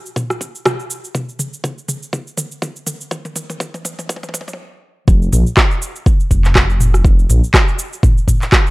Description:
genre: afro house.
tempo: 122 BPM.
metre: 4/4.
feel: swing 56% on 16ths.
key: unclear.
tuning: A4 = 441 Hz.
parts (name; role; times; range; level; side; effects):
afro-pop drum kit; drums; 0.1-8.7 s; handclaps, rim click, shaker, toms; -18 LUFS; equal; studio ambience.
electronic kick drum; drums; 0.2-8.6 s; none; -14 LUFS; equal; high-pass filter on kick, studio ambience.
dark detuned saw bass; bass; 5.1-7.4 s; F1 to Bb1; -14 LUFS; equal; sidechain pumping.
room: little or no reverb.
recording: dry, gritty hardware recording, high-pass filter.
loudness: -14 LUFS.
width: side -22 dB against mid.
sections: 0.0-5.1 A section; 5.1-8.7 B section.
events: build-up 0.0-5.1; drum fill 0.0-4.6; drop 5.1-8.7.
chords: none.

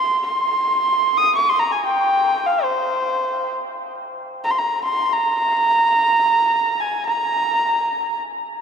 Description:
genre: Persian modal ensemble.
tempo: free time.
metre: none.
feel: none.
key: C dastgah shur.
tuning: A4 = 440 Hz.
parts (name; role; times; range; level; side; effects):
rich kamancheh; solo; 0.0-8.2 s; C5 to Eb6; -17 LUFS; right 1 dB; none.
room: wet cathedral reverb, RT60 6.1 s.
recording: in a vast, echoing space.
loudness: -17 LUFS.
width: side -7 dB against mid.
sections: 0.0-3.8 A section; 3.8-8.6 A section.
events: none.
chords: none.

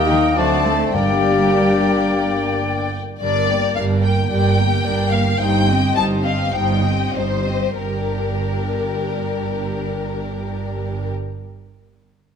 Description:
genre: quick classical-period movement for symphony orchestra.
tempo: 92-112 BPM.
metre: 4/4.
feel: rubato.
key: G minor.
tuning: A4 = 440 Hz.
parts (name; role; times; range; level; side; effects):
warm studio violin section; melody; 0.0-11.1 s; Bb4 to A5; -24 LUFS; left 6 dB; none.
bright clarinet; second line; 0.0-2.9 s; Bb4 to C5; -32 LUFS; left 4 dB; none.
flute section; second line; 0.0-2.9 s; G5 to A5; -26 LUFS; left 6 dB; none.
mellow oboe; second line; 0.0-2.9 s; D5 to Eb5; -24 LUFS; left 3 dB; none.
warm chamber violin section; second line; 0.0-11.1 s; Eb4 to G5; -28 LUFS; left 3 dB; none.
mellow bassoon; accompaniment; 0.0-2.9 s; A3 to Bb3; -24 LUFS; equal; none.
rich studio viola section; accompaniment; 0.0-11.1 s; G3 to A4; -25 LUFS; left 1 dB; none.
mellow French horn section; sustained chords; 0.0-2.9 s; Bb3 to Eb4; -23 LUFS; left 5 dB; none.
rich studio double bass section; bass; 0.0-11.1 s; G1 to Eb2; -24 LUFS; right 4 dB; none.
warm studio cello section; bass; 0.1-11.1 s; G2 to A3; -23 LUFS; right 3 dB; none.
timpani; percussion; 0.9-1.8 s; G2; -29 LUFS; left 1 dB; none.
room: wet recital hall reverb, RT60 1.5 s.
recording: none.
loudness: -17 LUFS.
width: side -7 dB against mid.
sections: 0.0-3.2 A section; 3.2-7.8 B section; 7.8-12.4 C section.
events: slowing down 2.1-7.8.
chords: 0.4 D7; 0.9 Gm; 5.4 Cm/G; 7.8 Gm.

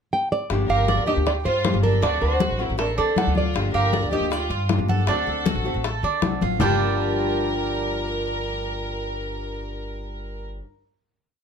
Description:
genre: latin, Cuban son and guajira.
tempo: 157 BPM.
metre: 4/4.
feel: straight.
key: G minor.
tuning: A4 = 441 Hz.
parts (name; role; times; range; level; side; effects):
nylon-string guitar; melody; 0.1-10.6 s; A4 to G5; -25 LUFS; right 3 dB; none.
nylon-string guitar; accompaniment; 0.5-10.7 s; G2 to G4; -30 LUFS; left 4 dB; none.
upright bass; bass; 0.5-10.6 s; G1 to D3; -26 LUFS; equal; none.
bongos; percussion; 0.5-6.7 s; none; -29 LUFS; left 8 dB; none.
congas; percussion; 0.5-6.7 s; none; -27 LUFS; left 5 dB; none.
dark studio violin section; second line; 0.7-10.4 s; C4 to Bb4; -30 LUFS; equal; none.
Cuban tres; arpeggios; 0.7-10.6 s; G3 to D5; -27 LUFS; right 4 dB; none.
room: light reverb.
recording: none.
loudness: -20 LUFS.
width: side -7 dB against mid.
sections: 0.0-0.5 pickup bar; 0.5-6.6 montuno (vamp); 6.6-9.7 final chord.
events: none.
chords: 0.0 N.C.; 0.5 Gm7; 2.0 D7; 3.6 Gm7; 5.1 D7; 6.6 Gm7.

